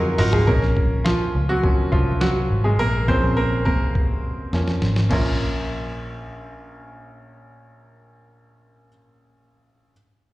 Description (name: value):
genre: piano-driven pop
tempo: 104 BPM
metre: 4/4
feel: straight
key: Bb minor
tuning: A4 = 440 Hz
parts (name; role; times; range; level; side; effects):
- bright upright piano; accompaniment; 0.0-9.9 s; Bb1 to C5; -23 LUFS; right 1 dB; slapback echo
- vintage muted picked electric bass; bass; 0.0-8.9 s; Ab1 to F2; -23 LUFS; equal; none
- lo-fi sampler-style drum kit; drums; 0.2-5.2 s; crash cymbal, hi-hat, kick drum, snare drum, toms; -22 LUFS; equal; none
room: little or no reverb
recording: live gig heard through the venue's PA, recital hall reverb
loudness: -18 LUFS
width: side -18 dB against mid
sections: 0.5-5.1 A section; 5.1-7.4 B section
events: drum fill 0.0-0.5, 4.5-5.1; upright piano solo 0.5-5.1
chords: 0.5 Bbm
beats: | 0.48 1.06 1.64 2.21 | 2.79 3.37 3.95 4.53 | 5.11 5.68 6.26 6.84